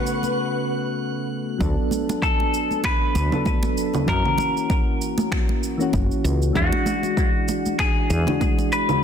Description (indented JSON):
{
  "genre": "sunset chillout",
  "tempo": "97 BPM",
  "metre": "4/4",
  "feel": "swing 56% on 16ths",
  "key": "D lydian",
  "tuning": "A4 = 440 Hz",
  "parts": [
    { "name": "semi-hollow electric guitar", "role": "melody", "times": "0.0-9.0 s", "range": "F#4 to C#5", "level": "-25 LUFS", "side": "left 2 dB", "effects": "warbly pitch drift, digital delay" },
    { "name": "soft electric-piano-like synth keys", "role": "accompaniment", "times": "0.0-9.0 s", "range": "C#3 to A4", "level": "-25 LUFS", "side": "moving between left 4 dB and right 3 dB", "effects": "chorus, auto-pan, tape echo" },
    { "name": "electronic cabasa, finger snaps and congas", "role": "drums", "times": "0.1-9.0 s", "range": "none", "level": "-30 LUFS", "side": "right 3 dB", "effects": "overdrive, soft clipping on snare" },
    { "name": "congas", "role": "percussion", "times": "0.2-8.7 s", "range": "none", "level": "-30 LUFS", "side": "right 4 dB", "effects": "none" },
    { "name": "woody fretless electric bass", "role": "bass", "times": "1.6-8.2 s", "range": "F#1 to F#2", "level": "-21 LUFS", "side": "equal", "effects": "none" },
    { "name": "electronic kick drum", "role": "drums", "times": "1.6-8.5 s", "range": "none", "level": "-23 LUFS", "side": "equal", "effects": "overdrive" }
  ],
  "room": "light reverb, digital ambience",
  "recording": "dense, heavily limited modern master",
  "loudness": "-19 LUFS",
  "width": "side -8 dB against mid",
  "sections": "0.0-1.6 A section; 1.6-9.0 A section",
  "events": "break 0.4-1.6",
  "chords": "0.0 A69; 1.6 D6; 4.1 F#7; 6.6 E9"
}